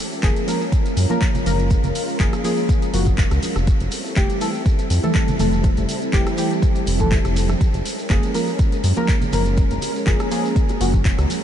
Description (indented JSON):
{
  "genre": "deep house",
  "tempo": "122 BPM",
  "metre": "4/4",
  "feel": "swing 54% on 16ths",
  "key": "unclear",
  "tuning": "A4 = 440 Hz",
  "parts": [
    { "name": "soft string machine", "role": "sustained chords", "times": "0.0-11.4 s", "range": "G3 to A#4", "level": "-26 LUFS", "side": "equal", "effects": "ensemble chorus, sidechain pumping" },
    { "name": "shekere", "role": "percussion", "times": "0.1-11.4 s", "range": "none", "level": "-36 LUFS", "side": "right 2 dB", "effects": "none" },
    { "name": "deep mellow chord stab", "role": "stabs", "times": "0.2-11.0 s", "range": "E3 to A#4", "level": "-24 LUFS", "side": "equal", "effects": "chorus, sidechain pumping, ping-pong delay" },
    { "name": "round analog bass", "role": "bass", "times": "0.2-11.3 s", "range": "E#1 to F#2", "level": "-20 LUFS", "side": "equal", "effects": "tube saturation, sidechain pumping" },
    { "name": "deep house drum kit", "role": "drums", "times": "0.2-11.4 s", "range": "handclaps, hi-hat, rim click", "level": "-29 LUFS", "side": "left 1 dB", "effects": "small room ambience" },
    { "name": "electronic kick drum", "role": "drums", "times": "0.2-11.2 s", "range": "none", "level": "-18 LUFS", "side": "equal", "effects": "small room ambience" },
    { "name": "congas and bongos", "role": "percussion", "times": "1.1-11.4 s", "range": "none", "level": "-30 LUFS", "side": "right 5 dB", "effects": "none" }
  ],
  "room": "light reverb",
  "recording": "nothing above 10.6 kHz",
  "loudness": "-17 LUFS",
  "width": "side -10 dB against mid",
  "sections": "0.0-11.4 A section",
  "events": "none",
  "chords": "0.0 F#maj9; 3.7 Fmaj9; 7.6 F#maj9"
}